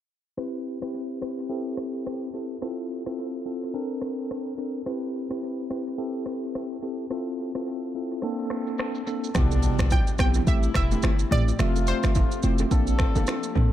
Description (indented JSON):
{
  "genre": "afrobeats",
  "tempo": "107 BPM",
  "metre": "4/4",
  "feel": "swing 58% on 16ths",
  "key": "C major",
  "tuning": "A4 = 443 Hz",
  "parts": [
    { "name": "tine electric piano", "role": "accompaniment", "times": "0.4-13.7 s", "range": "C3 to E5", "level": "-29 LUFS", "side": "equal", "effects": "medium stereo tremolo, dub echo" },
    { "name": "afro-pop drum kit", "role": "drums", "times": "0.4-13.7 s", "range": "finger snaps, kick drum, rim click, shaker, toms", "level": "-28 LUFS", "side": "equal", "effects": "dub echo" },
    { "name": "clear horn section", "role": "second line", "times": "9.3-13.5 s", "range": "B2 to A4", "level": "-35 LUFS", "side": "left 6 dB", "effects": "none" },
    { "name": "ethereal airy pad", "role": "sustained chords", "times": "10.1-13.7 s", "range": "E3 to E5", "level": "-35 LUFS", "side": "left 1 dB", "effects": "ensemble chorus, built-in reverb" },
    { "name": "warm 808-style bass", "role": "bass", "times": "9.3-13.7 s", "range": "E1 to C2", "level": "-23 LUFS", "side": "equal", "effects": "none" },
    { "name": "impact", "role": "sound effects", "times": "9.3-11.6 s", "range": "none", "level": "-32 LUFS", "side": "equal", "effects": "none" },
    { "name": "congas and bongos", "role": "percussion", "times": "9.4-13.7 s", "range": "none", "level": "-36 LUFS", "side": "right 7 dB", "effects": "none" },
    { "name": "analog pluck", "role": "melody", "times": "9.9-13.5 s", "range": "C5 to G5", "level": "-32 LUFS", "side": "right 3 dB", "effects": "chorus, dub echo" }
  ],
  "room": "digital ambience",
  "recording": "echo-heavy mix, low-pass filter",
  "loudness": "-24 LUFS",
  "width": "side -12 dB against mid",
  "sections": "0.4-9.3 A section; 9.3-13.7 B section",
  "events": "filter sweep 0.4-9.3; impact 9.3-11.6",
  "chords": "0.4 Cmaj7; 1.5 Am7; 2.6 Fmaj7; 3.7 Bbmaj9; 4.9 Cmaj7; 6.0 Am7; 7.1 Fmaj7; 8.2 Bbmaj9; 9.3 Cmaj7; 10.5 Am7; 11.6 Fmaj7; 12.7 Bbmaj9"
}